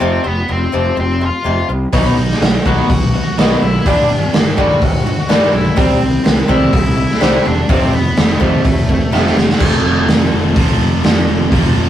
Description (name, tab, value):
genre	quiet-loud alternative rock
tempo	125 BPM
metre	4/4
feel	straight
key	unclear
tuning	A4 = 440 Hz
part	octave-fuzz lead guitar	melody	0.0-9.3 s	A3 to F#5	-21 LUFS	left 2 dB	distortion
part	picked swing-style acoustic guitar	arpeggios	0.0-9.6 s	F2 to C4	-19 LUFS	left 2 dB	none
part	fuzz fingered electric bass	bass	0.0-11.9 s	E1 to F2	-18 LUFS	equal	overdrive
part	crunchy overdriven guitar	riff	1.9-11.9 s	F2 to C4	-20 LUFS	right 4 dB	none
part	raw garage drum kit	drums	1.9-11.6 s	crash cymbal, hi-hat, kick drum, snare drum	-14 LUFS	equal	none
part	sludgy distorted guitar	riff	9.6-11.9 s	F2 to F4	-20 LUFS	left 5 dB	overdrive
room	light reverb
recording	rough rehearsal-room recording, warm saturation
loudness	-11 LUFS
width	side -11 dB against mid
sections	0.0-9.6 A section; 9.6-11.9 B section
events	drum fill 9.1-9.6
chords	0.0 F5; 1.9 B; 3.9 G5; 5.8 C; 7.7 F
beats	| 0.01 0.49 0.97 1.45 | 1.94 2.42 2.90 3.38 | 3.86 4.34 4.82 5.30 | 5.78 6.26 6.74 7.21 | 7.69 8.17 8.65 9.13 | 9.61 10.09 10.57 11.04 | 11.52